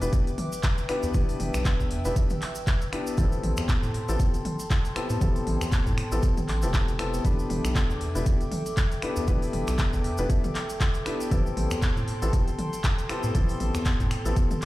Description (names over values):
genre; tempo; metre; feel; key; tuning
afro house; 118 BPM; 4/4; swing 57% on 16ths; E minor; A4 = 440 Hz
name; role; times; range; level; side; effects
dark analog pad; sustained chords; 0.0-14.7 s; A4 to E6; -36 LUFS; right 1 dB; chorus, sidechain pumping
felt-muted upright piano; stabs; 0.0-14.5 s; B3 to B4; -32 LUFS; left 3 dB; sidechain pumping, ping-pong delay
round analog bass; bass; 0.0-14.7 s; E1 to A2; -28 LUFS; equal; tube saturation, sidechain pumping
deep house drum kit; drums; 0.0-14.7 s; finger snaps, handclaps, hi-hat, toms; -33 LUFS; equal; none
tube shaker; percussion; 0.0-14.6 s; none; -43 LUFS; right 1 dB; none
electronic kick drum; drums; 0.1-14.5 s; none; -25 LUFS; equal; none
room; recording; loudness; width
small room ambience; played on a big sound system in a bare room, large studio reverb; -24 LUFS; side -17 dB against mid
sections
0.0-14.7 A section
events
none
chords
0.0 Em7; 3.2 Am9; 7.2 Em7; 11.3 Am9